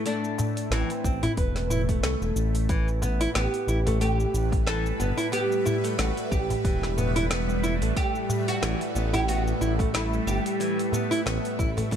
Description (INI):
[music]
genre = organic downtempo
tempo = 91 BPM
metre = 4/4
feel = swing 56% on 16ths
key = unclear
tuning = A4 = 440 Hz
[part]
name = oud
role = melody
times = 0.0-12.0 s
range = C4 to A4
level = -31 LUFS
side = right 2 dB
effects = vintage 12-bit sampler grit, tape echo
[part]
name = bowed-like drone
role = sustained chords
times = 0.0-12.0 s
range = A2 to E5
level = -31 LUFS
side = equal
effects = built-in reverb, phaser, sidechain pumping
[part]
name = nylon-string guitar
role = arpeggios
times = 0.0-12.0 s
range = E3 to B4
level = -30 LUFS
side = equal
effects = tape echo
[part]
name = afro-pop drum kit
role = drums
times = 0.1-12.0 s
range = cabasa, hi-hat, snare drum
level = -34 LUFS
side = equal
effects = none
[part]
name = darbuka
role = percussion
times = 0.4-11.9 s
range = none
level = -32 LUFS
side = left 1 dB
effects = none
[part]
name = smooth synth bass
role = bass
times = 0.7-12.0 s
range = E1 to C2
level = -27 LUFS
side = equal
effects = sidechain pumping
[part]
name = electronic kick drum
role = drums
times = 1.0-12.0 s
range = none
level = -28 LUFS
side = equal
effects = none
[sound]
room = light reverb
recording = none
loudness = -23 LUFS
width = side -9 dB against mid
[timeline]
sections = 0.0-12.0 A section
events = none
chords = 0.0 Am; 2.7 Em